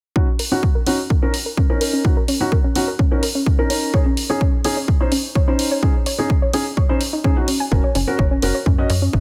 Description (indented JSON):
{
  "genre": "progressive house",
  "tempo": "127 BPM",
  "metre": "4/4",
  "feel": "straight",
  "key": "Eb dorian",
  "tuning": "A4 = 440 Hz",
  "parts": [
    { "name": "soft round pluck", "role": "arpeggios", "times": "0.2-9.1 s", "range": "Db4 to Ab5", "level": "-27 LUFS", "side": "equal", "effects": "chorus, sidechain pumping, delay" },
    { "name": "felt-muted upright piano", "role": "stabs", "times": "0.2-8.9 s", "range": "Db4 to Eb5", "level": "-25 LUFS", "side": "equal", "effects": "sidechain pumping, low-pass filter, delay" },
    { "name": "electronic kick drum", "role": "drums", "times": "0.2-9.2 s", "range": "none", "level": "-20 LUFS", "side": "equal", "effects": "none" },
    { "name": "electronic hi-hat", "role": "drums", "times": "0.4-9.0 s", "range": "none", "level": "-28 LUFS", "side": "equal", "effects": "none" },
    { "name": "tight sequencer bass", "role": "bass", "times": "7.7-9.2 s", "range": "Gb1 to Gb2", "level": "-23 LUFS", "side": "equal", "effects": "sidechain pumping" }
  ],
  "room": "light reverb",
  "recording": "none",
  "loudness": "-18 LUFS",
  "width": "mono",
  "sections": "0.2-9.2 A section",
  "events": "filter sweep on synth pluck 0.2-9.2",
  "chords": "0.2 Ebm7; 3.9 Absus4; 7.7 Gb"
}